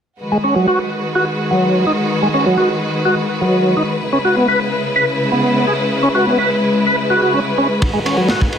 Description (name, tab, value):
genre	breakbeat, breaks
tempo	126 BPM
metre	4/4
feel	straight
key	G# minor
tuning	A4 = 439 Hz
part	bright studio string section	sustained chords	0.2-8.6 s	C#3 to B4	-17 LUFS	left 1 dB	sidechain pumping
part	percussive tonewheel organ	riff	0.3-8.4 s	F#3 to B4	-16 LUFS	equal	overdrive, chorus vibrato, slow rotary speaker, tube saturation, low-pass filter, digital delay
part	crunchy breakbeat drum kit	drums	7.8-8.6 s	kick drum, ride cymbal, snare drum	-16 LUFS	equal	none
room	moderate digital room reverb, RT60 1.1 s, small room ambience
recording	none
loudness	-13 LUFS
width	side -8 dB against mid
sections	0.2-8.6 A section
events	filter sweep on tonewheel organ 0.2-8.6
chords	0.2 G#m7; 4.0 C#m7; 7.8 G#m7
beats	| 0.20 0.68 1.15 1.63 | 2.11 2.58 3.06 3.53 | 4.01 4.49 4.96 5.44 | 5.92 6.39 6.87 7.34 | 7.82 8.30